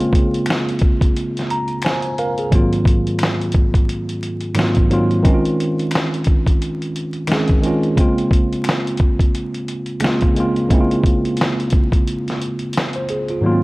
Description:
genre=lo-fi hip hop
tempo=88 BPM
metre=4/4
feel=swing 60% on 16ths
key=Bb minor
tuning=A4 = 444 Hz
part: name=mellow tine electric piano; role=accompaniment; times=0.0-13.6 s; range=Ab2 to Bb5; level=-18 LUFS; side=equal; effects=medium stereo tremolo, cassette tape, low-pass filter
part: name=lo-fi sampler-style drum kit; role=drums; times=0.0-13.4 s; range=hi-hat, kick drum, snare drum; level=-17 LUFS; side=equal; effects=none
part: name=finger snaps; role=percussion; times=0.5-10.2 s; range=none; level=-31 LUFS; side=left 4 dB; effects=none
room=light reverb, digital ambience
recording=vinyl crackle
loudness=-15 LUFS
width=side -22 dB against mid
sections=0.0-13.6 A section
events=tine electric piano fill 1.2-2.5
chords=0.0 Bbm9; 2.5 Ab13; 5.2 Dbmaj7; 8.0 Bbm9

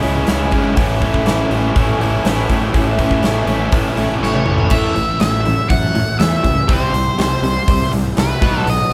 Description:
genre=classic rock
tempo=122 BPM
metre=4/4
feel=straight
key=unclear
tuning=A4 = 439 Hz
part: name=picked old ladder-braced acoustic guitar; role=accompaniment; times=0.0-8.9 s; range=A2 to F#4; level=-29 LUFS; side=equal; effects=none
part: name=overdriven semi-hollow guitar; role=riff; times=0.0-8.9 s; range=A2 to E4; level=-21 LUFS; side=equal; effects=none
part: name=fuzz fingered electric bass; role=bass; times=0.0-8.9 s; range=G#1 to F#2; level=-23 LUFS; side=equal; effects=overdrive
part: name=huge arena drum kit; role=drums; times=0.0-8.8 s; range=crash cymbal, hi-hat, kick drum, snare drum, toms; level=-21 LUFS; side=equal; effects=none
part: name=octave-fuzz lead guitar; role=melody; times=4.2-8.9 s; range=B4 to F#5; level=-22 LUFS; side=equal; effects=wah, distortion
part: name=bright tonewheel organ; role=sustained chords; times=4.7-8.9 s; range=F#3 to C#5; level=-34 LUFS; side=equal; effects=none
room=moderate large studio reverb, RT60 1.3 s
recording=band playing live in one room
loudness=-16 LUFS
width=mono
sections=0.0-4.7 A section; 4.7-8.9 B section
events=drum fill 4.2-4.7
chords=0.0 C#m; 0.8 A; 6.7 C; 8.4 B

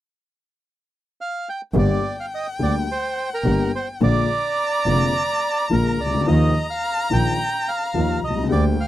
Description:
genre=tango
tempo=106 BPM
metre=4/4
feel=rubato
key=G minor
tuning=A4 = 440 Hz
part: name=bandoneon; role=melody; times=1.2-8.9 s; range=Bb4 to G5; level=-24 LUFS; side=right 3 dB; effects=none
part: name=warm concert grand piano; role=accompaniment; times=1.7-8.7 s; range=F1 to G4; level=-22 LUFS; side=left 4 dB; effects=none
part: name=clear double bass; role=bass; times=1.7-8.7 s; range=F1 to Eb2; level=-21 LUFS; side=right 2 dB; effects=none
part: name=warm violin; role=second line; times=1.8-8.9 s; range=G5 to Bb5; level=-28 LUFS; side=left 3 dB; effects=none
room=little or no reverb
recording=dry, close 1970s-style studio recording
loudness=-19 LUFS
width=side -13 dB against mid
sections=0.0-1.7 A section; 1.7-8.9 B section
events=none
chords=0.0 N.C.; 1.7 Gm; 4.0 Bb7; 6.3 Ebsus2

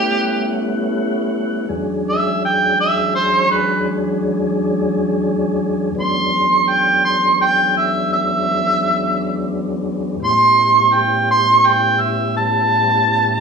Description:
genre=blues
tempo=56 BPM (dotted quarters)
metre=12/8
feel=straight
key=unclear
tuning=A4 = 444 Hz
part: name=mellow harmonica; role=melody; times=0.0-13.4 s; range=G4 to C6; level=-14 LUFS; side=right 2 dB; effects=overdrive
part: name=tonewheel organ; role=sustained chords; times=0.0-13.4 s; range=E2 to F#5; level=-20 LUFS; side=left 1 dB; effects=slow rotary speaker, chorus vibrato
room=wet large studio reverb, RT60 1.3 s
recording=band playing live in one room, small room ambience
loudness=-14 LUFS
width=side -5 dB against mid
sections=0.0-13.4 A section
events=none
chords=0.0 A13; 1.7 E13; 10.2 A9

